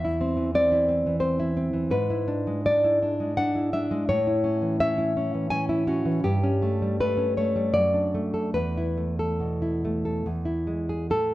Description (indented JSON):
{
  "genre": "romantic piece for solo classical guitar",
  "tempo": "70-90 BPM",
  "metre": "3/4",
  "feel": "rubato",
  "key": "A major",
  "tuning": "A4 = 441 Hz",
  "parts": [
    { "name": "nylon-string guitar", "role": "solo", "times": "0.0-11.3 s", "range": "E2 to G#5", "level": "-22 LUFS", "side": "equal", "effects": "none" }
  ],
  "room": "moderate recital hall reverb, RT60 1.3 s",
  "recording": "none",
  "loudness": "-22 LUFS",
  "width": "side -16 dB against mid",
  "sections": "0.0-11.1 A section",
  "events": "none",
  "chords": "0.0 C/E; 1.9 E7/G#; 4.1 A; 6.2 A7/G; 7.8 D/F#; 8.6 Esus4; 10.3 E"
}